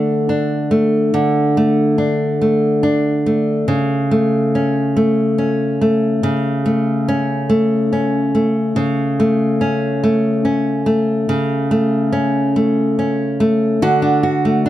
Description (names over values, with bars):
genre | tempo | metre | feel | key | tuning
pop | 47 BPM (dotted quarters) | 6/8 | straight | unclear | A4 = 441 Hz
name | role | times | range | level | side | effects
nylon-string guitar | solo | 0.0-14.7 s | C#3 to F#4 | -14 LUFS | equal | none
room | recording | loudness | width
light reverb | dark, warm production | -14 LUFS | side -13 dB against mid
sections
0.0-13.8 A section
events
none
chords
0.0 D5; 3.7 A/C#; 13.8 D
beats
| 1.15 2.42 | 3.69 4.96 | 6.23 7.50 | 8.77 10.03 | 11.29 12.56 | 13.83